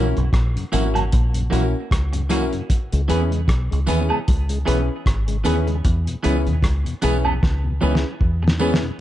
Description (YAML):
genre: roots reggae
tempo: 76 BPM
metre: 4/4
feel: swing 57% on 16ths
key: unclear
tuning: A4 = 441 Hz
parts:
  - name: clean electric guitar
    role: accompaniment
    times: 0.0-8.7 s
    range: E3 to G#4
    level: -27 LUFS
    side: right 4 dB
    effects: tape echo
  - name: mellow tonewheel organ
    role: accompaniment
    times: 0.0-8.9 s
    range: E2 to E4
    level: -29 LUFS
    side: left 3 dB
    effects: chorus vibrato, slow rotary speaker
  - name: warm upright piano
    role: stabs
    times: 0.0-8.8 s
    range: C#4 to B4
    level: -25 LUFS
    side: left 2 dB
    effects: none
  - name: deep dub fingered electric bass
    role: bass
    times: 0.0-8.8 s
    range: G#1 to E2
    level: -20 LUFS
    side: equal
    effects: none
  - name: cloth-damped thuddy drum kit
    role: drums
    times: 0.2-8.9 s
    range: hi-hat, kick drum, rim click, snare drum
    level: -21 LUFS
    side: equal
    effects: none
  - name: tambourine and woodblock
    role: percussion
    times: 0.7-8.8 s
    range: none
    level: -29 LUFS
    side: right 3 dB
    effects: none
room: little or no reverb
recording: nothing above 10.5 kHz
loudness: -18 LUFS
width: side -13 dB against mid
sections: 0.0-9.0 A section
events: drum fill 7.4-9.0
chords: 0.0 F#7; 2.7 C#m7; 5.8 E6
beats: 0.34 1.13 1.91 | 2.70 3.49 4.27 5.06 | 5.85 6.63 7.42 8.21